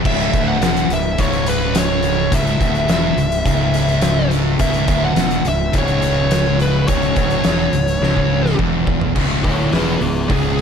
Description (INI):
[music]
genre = stoner and doom metal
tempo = 105 BPM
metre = 4/4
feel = straight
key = C# minor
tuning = A4 = 440 Hz
[part]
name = mellow tonewheel organ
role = sustained chords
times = 0.0-10.6 s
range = none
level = barely audible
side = none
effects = none
[part]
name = high-gain distorted guitar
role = riff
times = 0.0-10.6 s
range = C#2 to E2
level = -24 LUFS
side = right 1 dB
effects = distortion
[part]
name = thick fuzz guitar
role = riff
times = 0.0-10.6 s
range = C#2 to E2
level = -22 LUFS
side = left 11 dB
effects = distortion
[part]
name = thick fuzz guitar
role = riff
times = 0.0-10.6 s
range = C#2 to E2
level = -22 LUFS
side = right 11 dB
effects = distortion
[part]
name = fuzz fingered electric bass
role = bass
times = 0.0-10.6 s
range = C#1 to E1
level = -23 LUFS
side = equal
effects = overdrive
[part]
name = fuzz lead guitar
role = melody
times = 0.1-10.6 s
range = B3 to F#5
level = -21 LUFS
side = left 1 dB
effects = distortion, slapback echo
[part]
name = oversized low-tuned drum kit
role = drums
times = 0.1-10.6 s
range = crash cymbal, hi-hat, kick drum, snare drum, toms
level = -20 LUFS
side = equal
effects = none
[sound]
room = light reverb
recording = none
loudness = -14 LUFS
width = side -7 dB against mid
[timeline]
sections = 0.0-9.2 A section; 9.2-10.6 B section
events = drum fill 8.0-9.2; lead electric guitar solo 9.2-10.6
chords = 0.0 C#m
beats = | 0.05 0.61 1.19 1.75 | 2.32 2.89 3.46 4.03 | 4.60 5.17 5.74 6.31 | 6.88 7.45 8.02 8.59 | 9.16 9.73 10.30